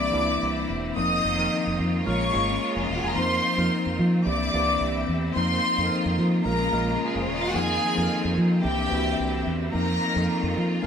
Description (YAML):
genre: disco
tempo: 110 BPM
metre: 4/4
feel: straight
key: unclear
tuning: A4 = 439 Hz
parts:
  - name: warm studio string section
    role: second line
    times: 0.0-10.9 s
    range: Ab3 to Eb6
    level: -26 LUFS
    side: left 1 dB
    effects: none
  - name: mellow tine electric piano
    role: accompaniment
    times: 0.0-10.9 s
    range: E3 to Db5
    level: -27 LUFS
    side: equal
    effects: medium stereo tremolo
  - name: clear studio string section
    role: sustained chords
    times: 0.0-10.9 s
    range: Db3 to F4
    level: -32 LUFS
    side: equal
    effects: none
  - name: fingered electric bass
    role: bass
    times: 0.0-10.9 s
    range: Eb1 to F3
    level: -27 LUFS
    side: equal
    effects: none
room: wet stone room reverb, RT60 1.0 s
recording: band playing live in one room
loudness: -22 LUFS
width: side -7 dB against mid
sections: 0.0-10.9 A section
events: none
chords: 0.0 C9; 1.0 F7sus4; 2.1 Bbm7; 3.2 F7sus4; 4.3 C9; 5.3 F7sus4; 6.4 Bbm7; 7.5 F7sus4; 8.6 C9; 9.7 F7sus4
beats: 0.41 | 0.96 1.51 2.06 2.61 | 3.15 3.70 4.25 4.80 | 5.35 5.90 6.44 6.99 | 7.54 8.09 8.63 9.18 | 9.73 10.28 10.82